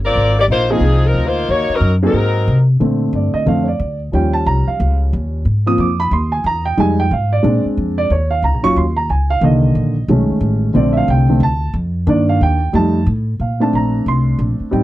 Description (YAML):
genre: jazz, big band swing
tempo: 181 BPM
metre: 4/4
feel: swing 63% on 8ths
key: Bb major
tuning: A4 = 439 Hz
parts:
  - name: mellow saxophone section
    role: melody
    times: 0.0-2.7 s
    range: F3 to D5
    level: -16 LUFS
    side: left 2 dB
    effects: none
  - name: upright bass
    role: bass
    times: 0.0-14.8 s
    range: Gb1 to C3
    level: -16 LUFS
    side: equal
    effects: none
  - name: warm baby grand piano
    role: accompaniment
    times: 0.7-14.8 s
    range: D3 to Eb6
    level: -16 LUFS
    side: right 1 dB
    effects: none
room: little or no reverb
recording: dry, close 1970s-style studio recording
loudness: -13 LUFS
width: side -15 dB against mid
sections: 0.0-2.8 A section; 2.8-13.4 B section; 13.4-14.8 B section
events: grand piano solo 2.8-14.8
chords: 0.2 Ab69; 1.5 Ebm7; 2.1 Ab9; 2.8 Bbmaj7; 4.1 Eb7; 5.5 Ab6; 6.8 Fm7; 7.4 Bb7; 8.1 Ebm7; 9.4 Cm7; 10.1 B13; 10.7 Bbmaj7; 12.1 Ebmaj9; 12.7 F9; 13.4 Bbmaj7